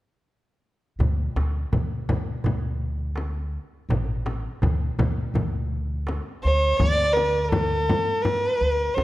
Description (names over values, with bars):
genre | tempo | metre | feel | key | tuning
Arabic maqam ensemble | 83 BPM | 4/4 | straight | unclear | A4 = 439 Hz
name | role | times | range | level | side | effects
upright bass | bass | 1.0-9.0 s | A1 to D2 | -26 LUFS | equal | none
darbuka | percussion | 1.0-6.5 s | none | -30 LUFS | right 2 dB | none
frame drum | percussion | 1.0-9.0 s | none | -28 LUFS | left 2 dB | none
warm violin | melody | 6.4-9.0 s | A4+40c to D5 | -21 LUFS | equal | none
room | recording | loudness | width
moderate recital hall reverb, RT60 1.7 s | dark, warm production | -22 LUFS | side -16 dB against mid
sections
1.0-6.8 A section; 6.8-9.0 B section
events
none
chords
none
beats
| 1.00 1.73 2.45 3.17 | 3.90 4.62 5.35 6.07 | 6.79 7.52 8.24 8.96